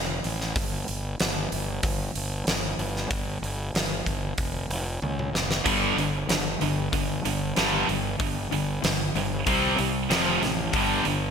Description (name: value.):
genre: hard rock.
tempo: 94 BPM.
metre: 4/4.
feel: straight.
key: unclear.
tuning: A4 = 440 Hz.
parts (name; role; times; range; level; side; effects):
fuzz fingered electric bass; bass; 0.0-11.3 s; F1 to C#2; -30 LUFS; equal; overdrive.
huge arena drum kit; drums; 0.2-11.2 s; hi-hat, kick drum, snare drum, splash cymbal, toms; -28 LUFS; equal; none.
tight distorted guitar; riff; 5.6-11.3 s; F2 to C4; -27 LUFS; right 9 dB; distortion.
overdriven semi-hollow guitar; riff; 5.7-11.3 s; F2 to C4; -28 LUFS; left 11 dB; wide subtle chorus.
room: moderate lush hall reverb, RT60 1.9 s, studio reverb.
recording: bright 1980s-style digital production.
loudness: -24 LUFS.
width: side -6 dB against mid.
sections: 0.0-11.3 A section.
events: drum fill 5.0-5.7.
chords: 0.0 F; 0.6 N.C.; 5.0 F#5; 5.7 G5; 9.5 C5; 10.1 F5; 10.7 G5.